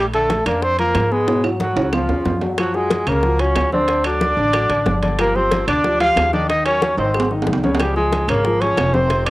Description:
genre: Afro-Cuban jazz.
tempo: 184 BPM.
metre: 4/4.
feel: straight.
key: unclear.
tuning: A4 = 440 Hz.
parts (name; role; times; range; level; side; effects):
mellow trumpet; melody; 0.0-9.3 s; F4 to F5; -19 LUFS; equal; cassette tape.
clear tenor saxophone; second line; 0.0-9.3 s; F3 to F4; -25 LUFS; right 1 dB; cassette tape.
warm grand piano; accompaniment; 0.0-9.3 s; Cb3 to Eb5; -22 LUFS; left 2 dB; cassette tape.
upright bass; bass; 0.0-9.3 s; F1 to Ab2; -23 LUFS; equal; none.
congas; percussion; 0.1-9.3 s; none; -27 LUFS; equal; none.
timbales; percussion; 0.1-9.3 s; none; -26 LUFS; right 4 dB; none.
bongos; percussion; 0.3-9.3 s; none; -26 LUFS; left 5 dB; none.
claves; percussion; 0.5-9.3 s; none; -31 LUFS; right 3 dB; none.
room: light reverb, small room ambience.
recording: home recording on cassette.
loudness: -15 LUFS.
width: side -18 dB against mid.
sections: 0.0-2.6 A section; 2.6-9.3 B section.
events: drum fill 1.3-2.6, 7.0-7.8.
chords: 0.0 Bbmaj7; 1.3 Abm7; 1.9 Db; 2.6 Gbmaj9; 3.9 D; 5.2 G7sus4; 6.5 Ebm7; 7.1 Ab5; 7.8 Dbmaj7.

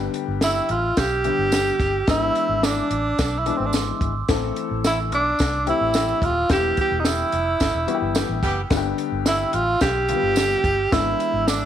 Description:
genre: uptempo 1960s-style soul.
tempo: 108 BPM.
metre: 4/4.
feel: straight.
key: unclear.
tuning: A4 = 440 Hz.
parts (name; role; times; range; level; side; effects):
dark upright piano; accompaniment; 0.0-11.7 s; D3 to A4; -27 LUFS; left 11 dB; none.
vintage muted fingered electric bass; bass; 0.0-11.6 s; Eb1 to C2; -28 LUFS; equal; none.
compact cocktail drum kit; drums; 0.1-11.6 s; hi-hat, kick drum, snare drum; -24 LUFS; equal; none.
breathy tenor saxophone; melody; 0.4-11.7 s; C4 to G4; -22 LUFS; right 2 dB; none.
glockenspiel with rubber mallets; second line; 0.4-11.7 s; C6 to G6; -28 LUFS; right 5 dB; none.
tambourine; percussion; 0.4-11.6 s; none; -34 LUFS; right 12 dB; none.
warm horn section; second line; 8.2-8.6 s; E3 to G4; -28 LUFS; right 2 dB; none.
room: light reverb, small room reverb.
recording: 1960s-style stereo with parts hard left and right.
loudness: -19 LUFS.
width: side -10 dB against mid.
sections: 0.0-11.7 A section.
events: band accent 6.5-8.7.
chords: 0.0 G; 2.1 E7/G#; 4.3 Am; 6.5 Em; 8.7 G; 10.9 E7/G#.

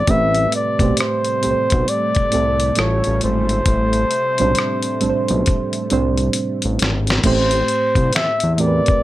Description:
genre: R&B, neo-soul.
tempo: 67 BPM.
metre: 4/4.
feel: swing 62% on 16ths.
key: A minor.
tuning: A4 = 438 Hz.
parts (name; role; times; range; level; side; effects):
breathy flugelhorn; melody; 0.0-9.0 s; C5 to E5; -19 LUFS; left 1 dB; none.
reed electric piano; accompaniment; 0.0-9.0 s; A2 to C5; -21 LUFS; right 4 dB; overdrive.
fat analog bass; bass; 0.0-8.8 s; G#1 to E2; -20 LUFS; left 1 dB; none.
warm analog pad; sustained chords; 0.1-7.2 s; C3 to A3; -28 LUFS; equal; chorus.
dusty soul sampler-style drum kit; drums; 0.1-9.0 s; crash cymbal, finger snaps, hi-hat, kick drum, rim click, snare drum; -20 LUFS; left 1 dB; none.
room: moderate small room reverb, RT60 0.6 s.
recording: none.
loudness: -15 LUFS.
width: side -15 dB against mid.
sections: 0.0-7.2 A section; 7.2-9.0 B section.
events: drum fill 5.5-7.2.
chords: 0.1 Am9; 2.8 A7b13; 3.7 Am11; 7.2 Am9.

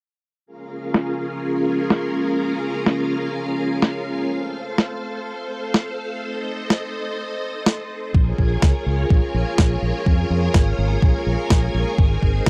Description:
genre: italo disco.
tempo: 125 BPM.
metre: 4/4.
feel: straight.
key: Bb minor.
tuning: A4 = 437 Hz.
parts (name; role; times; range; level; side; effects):
string machine, full ensemble; sustained chords; 0.5-12.5 s; Db4 to Ab5; -26 LUFS; equal; ensemble chorus.
electronic snare drum; drums; 0.9-12.5 s; none; -20 LUFS; equal; low-pass filter on snare, low-pass filter on room.
fingered electric bass; bass; 8.1-12.5 s; Ab1 to F2; -23 LUFS; equal; none.
electronic kick drum; drums; 8.1-12.5 s; none; -19 LUFS; equal; none.
room: little or no reverb.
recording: dry, close 1970s-style studio recording.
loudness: -21 LUFS.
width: mono.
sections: 0.5-12.5 A section.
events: filter sweep on drum 0.5-12.5.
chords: 0.5 Bbm7; 4.3 F; 8.1 Bbm7; 12.0 Abadd9.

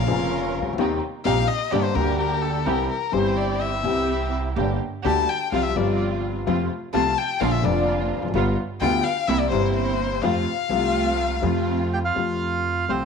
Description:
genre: tango.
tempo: 127 BPM.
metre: 4/4.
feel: rubato.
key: F major.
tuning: A4 = 441 Hz.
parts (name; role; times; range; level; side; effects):
dark violin; second line; 0.0-11.9 s; A4 to A5; -25 LUFS; left 7 dB; none.
dark upright piano; accompaniment; 0.0-13.1 s; F1 to G4; -25 LUFS; left 7 dB; none.
dark studio string section; stabs; 0.0-12.1 s; G3 to Bb4; -28 LUFS; right 10 dB; none.
upright bass; bass; 0.0-13.1 s; E1 to F2; -28 LUFS; right 3 dB; none.
bandoneon; melody; 11.9-13.1 s; C4 to G5; -24 LUFS; right 4 dB; none.
room: moderate echo chamber reverb, RT60 1.4 s, small room reverb.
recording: 1960s-style stereo with parts hard left and right.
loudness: -20 LUFS.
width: side -6 dB against mid.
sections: 0.0-12.2 A section.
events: violin solo 0.0-12.2.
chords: 0.0 Bbm; 0.8 Eb6; 1.7 Gm; 2.7 C; 4.6 Gm; 5.5 Csus4; 6.5 F; 7.4 Bb; 8.3 G7; 9.3 C7; 10.2 F.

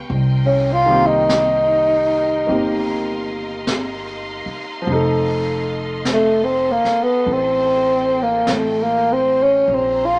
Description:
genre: jazz ballad.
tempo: 50 BPM.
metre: 4/4.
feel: swing 66% on 8ths.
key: unclear.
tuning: A4 = 440 Hz.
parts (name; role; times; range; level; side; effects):
warm baby grand piano; accompaniment; 0.0-9.7 s; Eb3 to A4; -26 LUFS; equal; none.
warm symphonic string section; sustained chords; 0.0-10.2 s; Ab4 to C6; -33 LUFS; equal; none.
upright bass; bass; 0.0-10.2 s; F1 to C2; -27 LUFS; equal; none.
jazz brush drum kit; drums; 0.1-10.2 s; brushed snare drum, hi-hat, snare drum; -30 LUFS; equal; none.
breathy tenor saxophone; melody; 0.5-10.2 s; A3 to F4; -18 LUFS; equal; none.
room: moderate studio reverb, RT60 0.8 s.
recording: none.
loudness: -18 LUFS.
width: mono.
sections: 0.0-10.2 A section.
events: tenor saxophone solo 0.0-10.2.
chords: 0.1 Cm7; 4.9 F7; 9.7 Bb7sus2.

